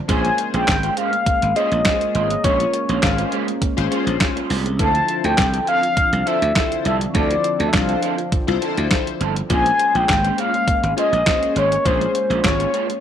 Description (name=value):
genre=early-eighties boogie funk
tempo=102 BPM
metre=4/4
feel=straight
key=unclear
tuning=A4 = 440 Hz
part: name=chorused pulse-width pad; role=sustained chords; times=0.0-13.0 s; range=D3 to D4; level=-28 LUFS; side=right 1 dB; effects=none
part: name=mellow horn-like synth lead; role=melody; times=0.1-13.0 s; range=C5 to A5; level=-19 LUFS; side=left 2 dB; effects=chorus, slapback echo
part: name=chorused polysynth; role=accompaniment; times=0.1-12.8 s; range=C4 to Db5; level=-26 LUFS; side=left 12 dB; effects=none
part: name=electric guitar at the edge of break-up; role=riff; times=0.1-12.9 s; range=F3 to C5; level=-28 LUFS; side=right 15 dB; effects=ensemble chorus
part: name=slap bass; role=bass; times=0.1-12.6 s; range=G1 to D2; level=-22 LUFS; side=right 1 dB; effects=none
part: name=crisp 8-bit digital drum machine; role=drums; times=0.1-13.0 s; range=handclaps, hi-hat, kick drum, snare drum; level=-21 LUFS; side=right 1 dB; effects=none
room=light reverb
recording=1960s-style stereo with parts hard left and right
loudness=-16 LUFS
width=side -9 dB against mid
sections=0.0-13.0 A section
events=none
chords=0.1 Bbm9; 4.8 Dm9; 9.5 Bbm9